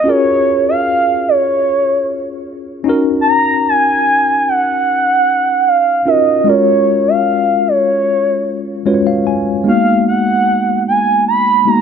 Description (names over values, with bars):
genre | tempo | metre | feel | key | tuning
R&B | 75 BPM | 4/4 | straight | F# major | A4 = 438 Hz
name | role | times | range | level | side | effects
gliding portamento lead | melody | 0.0-11.8 s | C#5 to B5 | -12 LUFS | right 2 dB | chorus, phaser
tine electric piano | accompaniment | 0.0-11.8 s | G#3 to G#5 | -16 LUFS | left 2 dB | medium stereo tremolo
room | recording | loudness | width
light reverb, digital ambience | none | -11 LUFS | side -7 dB against mid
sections
0.0-11.8 A section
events
tine electric piano fill 8.5-9.7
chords
0.1 F#maj7; 2.9 D#m7; 6.5 F#maj7; 9.7 G#m7